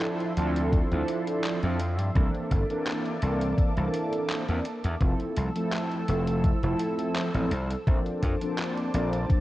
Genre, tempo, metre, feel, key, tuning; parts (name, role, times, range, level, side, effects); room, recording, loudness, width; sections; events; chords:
vaporwave; 84 BPM; 4/4; swing 53% on 16ths; F major; A4 = 440 Hz
mellow synth brass; accompaniment; 0.0-9.4 s; E3 to A4; -28 LUFS; equal; lush chorus, cassette tape, analog delay
lush unison pad; sustained chords; 0.0-9.4 s; F3 to E6; -37 LUFS; equal; chorus, phaser, vintage 12-bit sampler grit
detuned 8-bit digital drum machine; drums; 0.0-9.4 s; handclaps, hi-hat; -37 LUFS; equal; overdrive
gritty slap bass; bass; 0.4-9.3 s; F1 to G2; -28 LUFS; equal; overdrive
electronic kick drum; drums; 0.7-9.4 s; -24 LUFS; equal; overdrive
light reverb, digital ambience; worn, warbling old tape, cassette tape, warbly pitch drift; -25 LUFS; side -16 dB against mid
0.0-9.4 A section
0.0 Dm9; 2.2 C13; 5.0 Fmaj7; 7.9 Bbmaj9